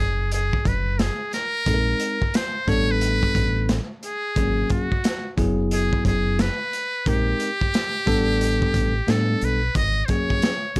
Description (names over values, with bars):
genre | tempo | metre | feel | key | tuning
hip hop, jazz-hop | 89 BPM | 4/4 | swing 66% on 16ths | unclear | A4 = 440 Hz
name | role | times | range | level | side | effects
trumpet with metal mute | melody | 0.0-10.8 s | F#4 to D#5 | -25 LUFS | equal | none
deep dub fingered electric bass | bass | 0.0-10.8 s | F#1 to A2 | -24 LUFS | equal | none
crunchy breakbeat drum kit | drums | 0.3-10.8 s | hi-hat, kick drum, snare drum | -24 LUFS | equal | none
bell-like tine electric piano | accompaniment | 1.7-10.8 s | F#3 to A#4 | -24 LUFS | left 1 dB | none
room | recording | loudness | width
little or no reverb | dry, gritty hardware recording | -19 LUFS | side -24 dB against mid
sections
0.0-10.8 A section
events
break 0.0-1.7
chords
0.0 F#sus2; 1.7 A#9sus4; 2.7 A9sus4; 4.4 G#9sus4; 5.4 F#9sus4; 7.1 A#9sus4; 8.1 A9sus4; 9.8 G#9sus4